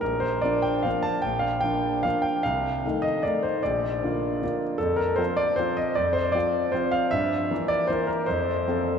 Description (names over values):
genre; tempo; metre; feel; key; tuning
classical, piano waltz; 153 BPM; 3/4; uneven beats, rubato; Bb major; A4 = 441 Hz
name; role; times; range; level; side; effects
clear concert grand piano; solo; 0.0-9.0 s; Bb1 to A5; -23 LUFS; equal; none
room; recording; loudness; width
wet cathedral reverb, RT60 5.9 s; in a vast, echoing space; -23 LUFS; side -7 dB against mid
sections
0.0-9.0 A section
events
none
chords
0.0 Bb; 2.5 Adim/C; 3.6 Bb; 4.8 F5; 7.1 Edim/G; 8.3 F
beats
| 0.04 0.44 0.86 | 1.25 1.64 2.05 | 2.45 2.85 3.25 | 3.64 4.03 4.42 | 4.81 5.20 5.59 | 5.98 6.35 6.74 | 7.13 7.51 7.90 | 8.29 8.68